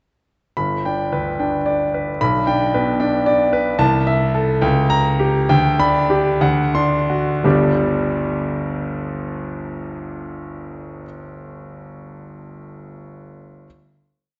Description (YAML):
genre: classical, virtuoso piano study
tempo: 56-76 BPM (dotted quarters)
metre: 6/8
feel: rubato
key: G major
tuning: A4 = 441 Hz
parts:
  - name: clear grand piano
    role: solo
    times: 0.6-13.7 s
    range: G1 to C6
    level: -20 LUFS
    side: equal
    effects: none
room: wet concert hall reverb, RT60 2.6 s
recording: nothing above 8.0 kHz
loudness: -18 LUFS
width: mono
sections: 0.6-7.4 A section; 7.4-11.4 final chord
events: slowing down 3.0-7.4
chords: 0.6 G; 2.2 G/B; 3.8 Am/C; 4.6 Gdim/Db; 5.5 G/D; 6.4 D7; 7.4 G